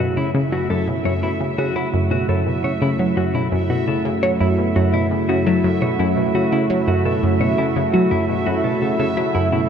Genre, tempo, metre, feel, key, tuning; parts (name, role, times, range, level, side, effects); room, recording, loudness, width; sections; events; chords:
ambient, sequencer-driven space music; 85 BPM; 4/4; straight; F# minor; A4 = 438 Hz
sweeping resonant pad; sustained chords; 0.0-9.7 s; C#3 to F#4; -21 LUFS; right 1 dB; chorus
clean electric guitar; arpeggios; 0.0-9.6 s; E4 to E5; -25 LUFS; left 3 dB; auto-pan, analog delay
analog pluck; riff; 0.0-9.6 s; F#2 to F#3; -20 LUFS; equal; chorus, phaser, vintage 12-bit sampler grit, analog delay
bubbling stepped-filter texture; texture; 0.0-9.7 s; E5; -30 LUFS; right 2 dB; chorus, built-in reverb
wet huge ambient reverb, RT60 8.4 s; in a vast, echoing space; -17 LUFS; side -7 dB against mid
0.0-9.7 A section
0.0 F#m7